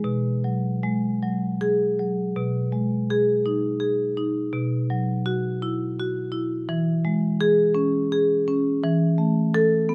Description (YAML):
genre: classical, contemporary piece for solo marimba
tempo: 56 BPM (dotted quarters)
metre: 6/8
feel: rubato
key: B major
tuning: A4 = 441 Hz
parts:
  - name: marimba with medium hard mallets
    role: solo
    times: 0.0-9.9 s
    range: B2 to A4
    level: -23 LUFS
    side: equal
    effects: none
room: light reverb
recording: close, detailed microphones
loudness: -23 LUFS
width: mono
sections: 0.0-2.4 A section; 2.4-9.9 A section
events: none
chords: 0.0 B5; 2.4 B6; 4.5 Bsus4; 6.7 E6; 8.8 Esus4